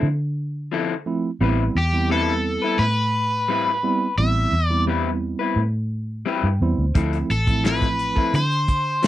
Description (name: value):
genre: straight-eighth soul blues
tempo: 87 BPM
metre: 4/4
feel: straight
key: A minor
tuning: A4 = 439 Hz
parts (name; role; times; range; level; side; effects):
- tine electric piano; accompaniment; 0.0-8.4 s; F3 to G5; -25 LUFS; right 4 dB; medium tremolo
- electric guitar through a small old amp; stabs; 0.0-9.1 s; F3 to B4; -24 LUFS; left 7 dB; none
- vintage muted fingered electric bass; bass; 0.0-9.1 s; A1 to D3; -23 LUFS; equal; none
- cranked stack guitar; melody; 1.8-9.1 s; G4 to E5; -22 LUFS; left 1 dB; overdrive
- warm soul drum kit; drums; 7.0-9.1 s; hi-hat, kick drum, snare drum; -21 LUFS; equal; none
room: little or no reverb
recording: dry, close 1970s-style studio recording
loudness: -19 LUFS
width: side -14 dB against mid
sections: 0.0-9.1 A section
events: tine electric piano fill 5.9-7.0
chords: 0.0 Dm9; 1.4 Am9; 7.0 Dm9